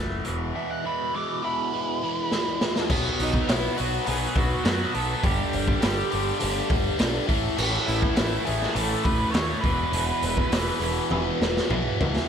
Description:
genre	quiet-loud alternative rock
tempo	102 BPM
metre	4/4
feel	straight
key	unclear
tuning	A4 = 440 Hz
part	clean electric guitar	arpeggios	0.0-2.9 s	E2 to F#4	-37 LUFS	left 6 dB	phaser, analog delay
part	biting overdriven guitar	riff	0.0-12.3 s	E2 to B3	-28 LUFS	left 1 dB	phaser
part	growling picked electric bass	bass	0.0-12.2 s	E1 to F#2	-30 LUFS	equal	overdrive
part	raw garage drum kit	drums	0.2-12.3 s	crash cymbal, hi-hat, kick drum, snare drum, toms	-26 LUFS	equal	none
part	dark smooth lead guitar	melody	0.6-11.7 s	D#4 to D6	-31 LUFS	right 4 dB	overdrive, analog delay
part	clear studio string section	sustained chords	2.9-12.3 s	D3 to B4	-38 LUFS	left 1 dB	none
part	tight distorted guitar	riff	2.9-12.3 s	E2 to B3	-31 LUFS	left 1 dB	distortion
room	light reverb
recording	none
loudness	-22 LUFS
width	side -8 dB against mid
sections	0.0-2.9 A section; 2.9-12.3 B section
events	lead electric guitar solo 0.0-2.9; drum fill 2.3-2.9, 11.1-12.3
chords	0.2 E; 2.9 B; 5.2 Gsus2; 7.3 A6; 9.6 E

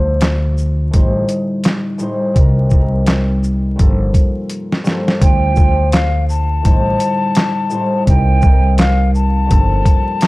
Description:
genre	hip hop, boom-bap hip-hop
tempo	84 BPM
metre	4/4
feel	swing 58% on 16ths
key	unclear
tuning	A4 = 444 Hz
part	concert harp	accompaniment	0.0-10.3 s	G2 to C5	-18 LUFS	left 1 dB	high-pass filter, low-pass filter
part	upright bass	bass	0.0-9.8 s	G1 to D2	-16 LUFS	equal	none
part	boom bap sampler-style drum kit	drums	0.2-10.3 s	handclaps, hi-hat, kick drum, shaker, snare drum	-13 LUFS	equal	none
part	breathy mellow jazz flute	melody	5.2-10.3 s	F5 to A5	-19 LUFS	left 1 dB	high-pass filter, low-pass filter
room	little or no reverb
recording	dry, gritty hardware recording, vinyl crackle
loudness	-12 LUFS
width	side -20 dB against mid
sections	0.0-5.2 A section; 5.2-10.3 B section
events	break 0.0-5.2; drum fill 4.5-5.2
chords	0.0 Dm7; 0.9 Am7b5; 2.4 Cm7; 3.8 Gm9; 5.2 Dm7; 6.6 Am7b5; 8.1 Cm7; 9.5 Gm9

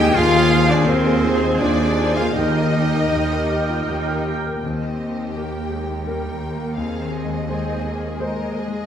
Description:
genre	cinematic, emotional film score for orchestra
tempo	82 BPM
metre	3/4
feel	uneven beats, rubato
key	Eb major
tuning	A4 = 440 Hz
part	rich cello	melody	0.0-4.2 s	C4 to G4	-24 LUFS	right 3 dB	none
part	rich studio violin section	melody	0.0-8.9 s	C5 to G5	-29 LUFS	left 3 dB	none
part	rich studio violin section	second line	0.0-8.9 s	G4 to G5	-27 LUFS	left 2 dB	none
part	rich studio viola section	accompaniment	0.0-8.9 s	G3 to Ab5	-29 LUFS	right 3 dB	none
part	warm concert grand piano	accompaniment	0.0-8.9 s	Eb2 to C5	-25 LUFS	left 2 dB	none
part	mellow French horn section	sustained chords	0.0-4.2 s	C4 to F4	-24 LUFS	left 1 dB	none
part	concert harp	arpeggios	0.0-8.9 s	Eb3 to Eb5	-29 LUFS	left 7 dB	none
part	clear studio cello section	bass	0.0-8.9 s	Eb2	-27 LUFS	right 3 dB	none
part	dark studio double bass section	bass	0.0-8.9 s	Eb2	-28 LUFS	right 2 dB	none
part	mellow clarinet	second line	0.2-4.2 s	G4 to Bb4	-28 LUFS	left 1 dB	none
room	wet scoring stage reverb, RT60 2.0 s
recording	none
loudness	-18 LUFS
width	side -9 dB against mid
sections	0.0-4.6 A section; 4.6-8.9 B section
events	none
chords	0.2 Fm/Eb; 2.4 Eb; 6.8 Ab/Eb

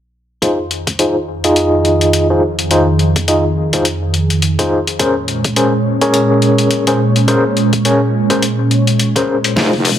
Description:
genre	glitch hop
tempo	105 BPM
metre	4/4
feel	swing 58% on 16ths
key	F minor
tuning	A4 = 440 Hz
part	warm analog pad	sustained chords	0.4-10.0 s	F2 to Db5	-15 LUFS	right 1 dB	chorus, sidechain pumping
part	overdriven tine electric piano	stabs	0.4-9.7 s	Db4 to Eb5	-14 LUFS	left 1 dB	fast tremolo, sidechain pumping, low-pass filter, ping-pong delay
part	boom bap sampler-style drum kit	drums	0.4-10.0 s	hi-hat, snare drum	-18 LUFS	left 3 dB	none
part	electronic kick drum	drums	0.4-9.7 s	none	-24 LUFS	equal	high-pass filter on kick
part	wobble bass	bass	9.6-10.0 s	F1	-16 LUFS	equal	chorus, high-pass filter
room	light reverb, digital ambience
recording	none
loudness	-11 LUFS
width	side -10 dB against mid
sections	0.4-9.6 A section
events	filter sweep on analog synth pad 0.4-9.6; drum fill 9.6-10.0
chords	0.4 Fm7; 5.0 Bbm9

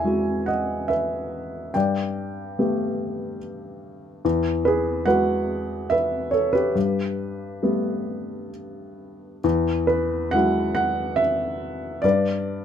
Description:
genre	classical, lyrical solo piano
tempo	65-74 BPM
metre	3/4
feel	rubato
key	unclear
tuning	A4 = 440 Hz
part	warm upright piano	solo	0.0-12.6 s	E2 to G#5	-22 LUFS	equal	none
room	little or no reverb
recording	close, detailed microphones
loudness	-21 LUFS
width	side -8 dB against mid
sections	0.0-9.4 A section; 9.4-12.6 A section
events	none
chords	0.0 Eadd9; 1.8 Gadd9; 4.2 Eadd9; 6.8 Gadd9; 9.4 Eadd9; 12.0 G

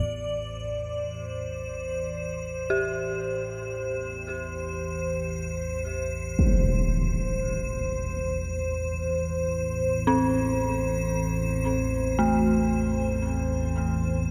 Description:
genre	dark ambient drone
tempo	free time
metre	none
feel	none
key	A minor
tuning	A4 = 440 Hz
part	dark detuned synth bell	arpeggios	0.0-14.3 s	A3 to G4	-30 LUFS	equal	chorus, diffuse ambient delay, shimmer reverb
part	analog drone	drone	0.0-14.3 s	A1 to E2	-33 LUFS	equal	lush chorus
part	icy glass pad	texture	0.0-14.3 s	C5	-33 LUFS	equal	chorus, built-in reverb, shimmer reverb
part	impact	percussion	6.4-6.6 s	none	-30 LUFS	equal	low-pass filter on sfx
room	wet cathedral reverb, RT60 6.5 s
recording	in a vast, echoing space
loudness	-27 LUFS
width	mono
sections	0.1-14.3 A section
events	fade-in on synth drone 0.1-14.3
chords	0.1 Am

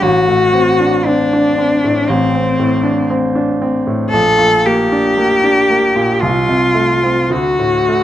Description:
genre	classical, romantic duo for cello and grand piano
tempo	51-60 BPM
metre	4/4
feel	rubato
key	unclear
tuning	A4 = 436 Hz
part	warm cello	melody	0.0-8.0 s	C4 to A4	-13 LUFS	left 2 dB	none
part	bright grand piano	accompaniment	0.0-8.0 s	A1 to D4	-15 LUFS	right 1 dB	none
room	moderate recital hall reverb, RT60 1.3 s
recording	close, detailed microphones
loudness	-11 LUFS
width	side -12 dB against mid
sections	0.0-8.0 A section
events	none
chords	0.0 D7/A; 4.1 Gm/Bb; 6.2 F/C; 7.3 D

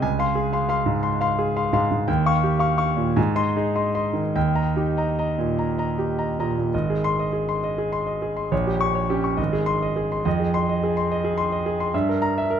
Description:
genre	classical, romantic character piece for solo piano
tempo	48-73 BPM (dotted quarters)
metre	6/8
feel	rubato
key	Ab major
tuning	A4 = 438 Hz
part	clear concert grand piano	solo	0.0-12.6 s	Ab1 to Db6	-20 LUFS	equal	none
room	moderate recital hall reverb, RT60 1.7 s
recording	close, detailed microphones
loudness	-20 LUFS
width	side -8 dB against mid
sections	0.0-6.7 A section; 6.7-12.6 B section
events	none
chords	0.0 Dbmaj7; 2.1 Eb9; 3.2 Ab; 4.3 Eb; 6.7 Ab; 8.5 Gdim/Bb; 9.4 Ab; 10.3 Fm7; 11.9 Edim/G

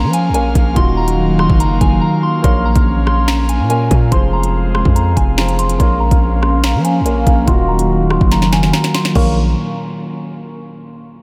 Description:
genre	hip hop, drill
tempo	143 BPM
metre	4/4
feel	half-time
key	Bb minor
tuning	A4 = 441 Hz
part	soft synth bell	melody	0.0-9.3 s	Ab5 to Db6	-24 LUFS	equal	chorus, low-pass filter, analog delay
part	felt-muted upright piano	accompaniment	0.0-9.3 s	Eb3 to F5	-25 LUFS	equal	low-pass filter
part	airy breathy pad	sustained chords	0.0-9.3 s	Bb2 to F5	-21 LUFS	equal	chorus, low-pass filter
part	hard-hitting 808-style bass	bass	0.0-9.5 s	Eb1 to F3	-18 LUFS	equal	none
part	drill drum kit	drums	0.1-9.3 s	crash cymbal, finger snaps, hi-hat, kick drum, rim click, snare drum	-19 LUFS	equal	none
room	moderate cathedral reverb, RT60 5.6 s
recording	dreamy mix soaked in reverb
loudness	-14 LUFS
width	mono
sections	0.0-9.2 A section; 9.2-10.8 B section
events	filter sweep 0.0-9.2; break 2.0-2.4; drum fill 8.3-9.2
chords	0.0 Bbm; 0.8 Ebmadd9; 2.4 Bbm; 4.1 Fm; 5.8 Bbm; 7.5 Ebmadd9; 9.2 Bbm

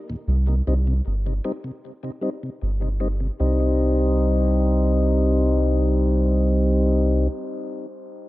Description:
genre	reggae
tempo	77 BPM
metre	4/4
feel	straight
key	C minor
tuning	A4 = 439 Hz
part	mellow tonewheel organ	accompaniment	0.1-7.3 s	Eb2 to Eb4	-23 LUFS	left 1 dB	slow rotary speaker, low-pass filter, tape echo
part	soft dub sub bass	bass	0.3-7.3 s	G1 to C2	-20 LUFS	equal	none
room	light reverb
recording	echo-heavy mix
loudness	-19 LUFS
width	side -18 dB against mid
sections	0.0-3.4 A section; 3.4-6.5 B section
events	none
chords	0.3 Cm

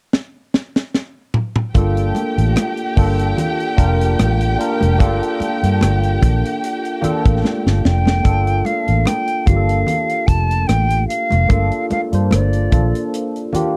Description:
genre	lush 1970s-style soul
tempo	74 BPM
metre	4/4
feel	swing 54% on 16ths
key	G minor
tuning	A4 = 436 Hz
part	tight funk drum kit	drums	0.1-13.7 s	hi-hat, kick drum, rim click, snare drum, toms	-19 LUFS	equal	none
part	barky tine electric piano	accompaniment	1.7-13.8 s	A3 to C5	-24 LUFS	equal	analog chorus
part	vintage muted fingered electric bass	bass	1.7-13.6 s	F1 to G2	-19 LUFS	equal	none
part	congas	percussion	1.7-13.7 s	none	-27 LUFS	equal	none
part	warm studio string section	second line	1.8-8.2 s	G4 to G5	-27 LUFS	equal	none
part	silver concert flute	melody	7.9-13.1 s	D5 to A5	-23 LUFS	equal	none
room	little or no reverb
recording	dry, close 1970s-style studio recording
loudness	-17 LUFS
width	mono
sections	0.0-1.8 A section; 1.8-8.3 B section; 8.3-13.8 C section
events	drum fill 0.1-1.8, 7.4-8.3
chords	0.0 N.C.; 1.8 Gm7

